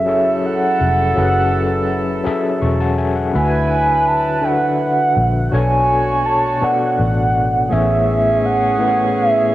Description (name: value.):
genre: slow six-eight R&B.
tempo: 55 BPM (dotted quarters).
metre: 6/8.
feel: straight.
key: B dorian.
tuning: A4 = 440 Hz.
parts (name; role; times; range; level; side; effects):
mellow horn-like synth lead; melody; 0.0-9.5 s; E5 to A5; -17 LUFS; right 2 dB; chorus, cassette tape.
overdriven tine electric piano; accompaniment; 0.0-9.5 s; A2 to C#6; -20 LUFS; left 3 dB; medium tremolo, cassette tape.
vintage muted fingered electric bass; bass; 0.0-9.5 s; E1 to D2; -20 LUFS; equal; none.
dark horn section; stabs; 0.1-9.5 s; E3 to C#5; -23 LUFS; right 2 dB; cassette tape, tape echo.
room: moderate spring reverb, RT60 1.6 s.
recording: home recording on cassette.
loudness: -14 LUFS.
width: side -15 dB against mid.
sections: 0.0-9.5 A section.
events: none.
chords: 0.0 F#m7; 3.3 D69; 5.5 Bm9; 7.7 Amaj9.